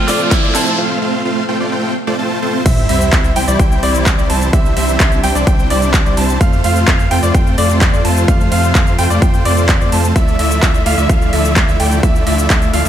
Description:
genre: EDM, festival progressive house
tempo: 128 BPM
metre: 4/4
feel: straight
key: C major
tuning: A4 = 437 Hz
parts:
  - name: raspy alto saxophone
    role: melody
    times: 0.0-0.8 s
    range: E4 to F4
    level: -23 LUFS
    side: left 1 dB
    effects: ping-pong delay
  - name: muted studio string section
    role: sustained chords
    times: 0.0-12.9 s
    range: C3 to E5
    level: -23 LUFS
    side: left 2 dB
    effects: sidechain pumping
  - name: clear baby grand piano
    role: arpeggios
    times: 0.0-12.9 s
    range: D5 to A5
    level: -20 LUFS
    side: right 1 dB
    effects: sidechain pumping, low-pass filter, ping-pong delay
  - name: dense compressed supersaw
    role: riff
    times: 0.0-12.9 s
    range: G3 to A5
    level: -17 LUFS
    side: right 1 dB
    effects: sidechain pumping, ping-pong delay
  - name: riser and sub drop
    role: sound effects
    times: 0.0-4.5 s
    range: none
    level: -22 LUFS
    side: equal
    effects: none
  - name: big-room dance drum kit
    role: drums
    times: 0.1-12.9 s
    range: crash cymbal, handclaps, hi-hat, shaker, snare drum, toms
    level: -20 LUFS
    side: equal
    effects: overdrive, high-pass filter on snare, studio reverb, high-pass filter on hats, high-pass filter on perc, high-pass filter on toms, high-pass filter on cymbals
  - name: electronic kick drum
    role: drums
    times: 0.3-12.6 s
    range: none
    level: -13 LUFS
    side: equal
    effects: overdrive, studio reverb
  - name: saturated sub bass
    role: bass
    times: 2.7-12.9 s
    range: C2 to F2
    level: -18 LUFS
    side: equal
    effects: sidechain pumping
room: light reverb, digital ambience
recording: none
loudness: -11 LUFS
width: side -10 dB against mid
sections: 0.0-2.7 A section; 2.7-12.9 B section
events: build-up 0.0-2.7; drum fill 0.0-0.8, 2.3-2.7; riser 0.0-0.8; filter sweep on grand piano 0.0-2.7; break 0.8-2.7; drop 2.7-12.9; impact 2.7-4.5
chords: 0.0 F; 2.7 C; 6.4 F; 10.2 Dmadd9

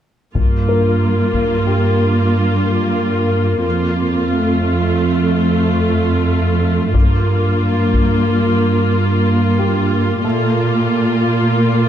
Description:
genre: cinematic, hybrid orchestral and electronic film score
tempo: 91 BPM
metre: 5/4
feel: straight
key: G minor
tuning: A4 = 440 Hz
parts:
  - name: rich symphonic viola section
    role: accompaniment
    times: 0.3-11.9 s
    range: A3 to F4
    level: -17 LUFS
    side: left 1 dB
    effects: none
  - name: rich symphonic cello section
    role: bass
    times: 0.3-11.9 s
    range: F2 to Bb2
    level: -16 LUFS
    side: right 2 dB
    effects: none
  - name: taiko ensemble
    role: drums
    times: 0.4-1.6, 6.9-8.2 s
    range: none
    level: -17 LUFS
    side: left 2 dB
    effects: none
  - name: warm grand piano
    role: texture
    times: 0.7-11.9 s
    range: A3 to Bb4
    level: -25 LUFS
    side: left 4 dB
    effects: tape echo
room: moderate scoring stage reverb, RT60 1.7 s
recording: dark, warm production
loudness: -13 LUFS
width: side -10 dB against mid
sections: 0.3-11.9 A section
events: build-up 0.3-11.9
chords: 0.3 Gm7; 3.6 F; 6.9 Gm7; 10.2 Bb5

